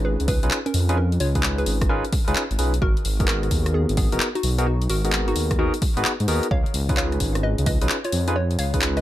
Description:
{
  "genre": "UK garage, two-step garage",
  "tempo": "130 BPM",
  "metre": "4/4",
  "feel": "swing 66% on 16ths",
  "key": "unclear",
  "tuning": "A4 = 440 Hz",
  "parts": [
    { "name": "hollow square pluck", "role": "melody", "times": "0.0-9.0 s", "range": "B3 to E#5", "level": "-30 LUFS", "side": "equal", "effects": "chorus, ping-pong delay" },
    { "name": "barky tine electric piano", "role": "stabs", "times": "0.0-9.0 s", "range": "B3 to B4", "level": "-27 LUFS", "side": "equal", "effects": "overdrive, ping-pong delay" },
    { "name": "dark detuned saw bass", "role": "bass", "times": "0.0-9.0 s", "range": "F#1 to G#2", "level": "-23 LUFS", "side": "equal", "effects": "sidechain pumping" },
    { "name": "house drum kit", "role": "drums", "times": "0.2-9.0 s", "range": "handclaps, hi-hat, rim click", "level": "-27 LUFS", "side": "left 1 dB", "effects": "none" },
    { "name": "electronic kick drum", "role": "drums", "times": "0.3-8.8 s", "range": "none", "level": "-23 LUFS", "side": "equal", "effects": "overdrive" }
  ],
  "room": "little or no reverb",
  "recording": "none",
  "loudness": "-19 LUFS",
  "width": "side -14 dB against mid",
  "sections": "0.0-9.0 A section",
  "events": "none",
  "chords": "0.0 C#7; 2.8 G#m9; 6.5 C#7"
}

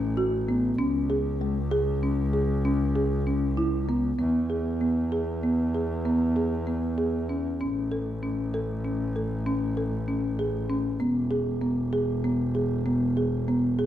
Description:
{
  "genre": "contemporary instrumental, chamber music in an uneven meter",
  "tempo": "194 BPM (eighths)",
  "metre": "11/8",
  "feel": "straight",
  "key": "E major",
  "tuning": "A4 = 440 Hz",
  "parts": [
    { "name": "folk marimba with soft mallets", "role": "arpeggios", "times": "0.0-13.9 s", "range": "G#3 to A4", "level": "-26 LUFS", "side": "equal", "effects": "none" },
    { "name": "rich double bass", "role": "bass", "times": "0.0-13.9 s", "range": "E1 to E2", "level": "-28 LUFS", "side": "equal", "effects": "none" }
  ],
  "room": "moderate concert hall reverb, RT60 2.0 s",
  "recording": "minimal, uncompressed stereo recording",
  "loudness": "-24 LUFS",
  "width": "side -11 dB against mid",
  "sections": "0.0-4.2 A section; 4.2-13.9 B section",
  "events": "none",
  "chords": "0.0 F#m/A; 0.8 C#5; 4.2 E; 7.6 A; 11.0 E"
}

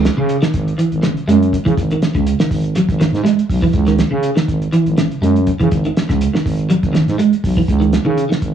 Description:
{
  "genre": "afrobeat",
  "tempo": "122 BPM",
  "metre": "4/4",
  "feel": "swing 53% on 16ths",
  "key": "C# minor",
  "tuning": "A4 = 440 Hz",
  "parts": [
    { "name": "clean electric guitar", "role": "arpeggios", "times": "0.0-8.4 s", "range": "C#3 to G#3", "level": "-17 LUFS", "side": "right 2 dB", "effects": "ensemble chorus, cassette tape" },
    { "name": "growling FM bass", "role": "bass", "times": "0.0-8.5 s", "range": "G#1 to C#3", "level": "-16 LUFS", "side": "right 1 dB", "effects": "none" },
    { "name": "cloth-damped thuddy drum kit", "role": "drums", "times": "0.0-8.5 s", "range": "hi-hat, kick drum, snare drum", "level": "-19 LUFS", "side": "right 1 dB", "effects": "cassette tape" }
  ],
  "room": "light reverb, small room ambience",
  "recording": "home recording on cassette",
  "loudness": "-13 LUFS",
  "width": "side -9 dB against mid",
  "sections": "0.0-8.5 A section",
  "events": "none",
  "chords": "0.0 C#m; 1.8 G#5; 3.7 C#sus2; 5.7 G#5; 7.7 C#sus2"
}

